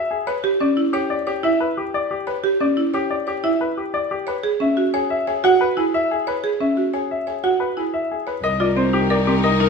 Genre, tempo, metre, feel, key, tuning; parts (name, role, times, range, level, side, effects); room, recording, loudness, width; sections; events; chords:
classical, minimalist pattern music; 180 BPM; 6/4; straight; A4 = 440 Hz
bright baby grand piano; melody; 0.0-9.7 s; G4 to F#5; -22 LUFS; left 4 dB
buzzing marimba with medium hard mallets; arpeggios; 0.3-9.7 s; C4 to C#5; -21 LUFS; right 3 dB
warm symphonic string section; sustained chords; 8.4-9.7 s; Eb4 to Bb4; -24 LUFS; left 6 dB
clear cello; bass; 8.4-9.7 s; C2; -21 LUFS; right 1 dB
moderate stone room reverb, RT60 1.1 s; -18 LUFS; side -5 dB against mid
0.0-8.4 A section; 8.4-9.7 B section
0.4 Em7; 4.4 C#m7; 8.4 Cm9